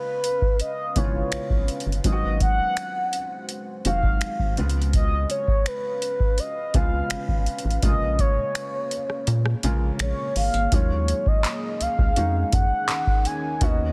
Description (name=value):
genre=contemporary R&B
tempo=83 BPM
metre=4/4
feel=straight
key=Eb minor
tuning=A4 = 440 Hz
part: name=mellow horn-like synth lead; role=melody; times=0.0-13.9 s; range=Cb5 to Ab5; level=-29 LUFS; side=equal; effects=chorus, phaser, delay
part: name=felt-muted upright piano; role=accompaniment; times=0.0-13.9 s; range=C3 to Gb4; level=-34 LUFS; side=equal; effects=none
part: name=deep dark ambient pad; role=sustained chords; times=0.0-13.9 s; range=Eb3 to F5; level=-38 LUFS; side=equal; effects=chorus, built-in reverb
part: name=booming analog drum machine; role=drums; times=0.2-13.8 s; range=finger snaps, handclaps, hi-hat, kick drum, rim click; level=-25 LUFS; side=equal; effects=soft clipping on snare
part: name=rubbery square bass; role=bass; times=1.0-13.9 s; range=F1 to Bb2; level=-27 LUFS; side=equal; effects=none
room=digital ambience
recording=dense, heavily limited modern master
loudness=-24 LUFS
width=mono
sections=0.0-10.7 A section; 10.7-13.9 B section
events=kick muted 9.3-10.7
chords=0.0 Db7; 2.0 Ab7; 4.6 Db7; 7.8 Bbm7; 10.7 Ebm11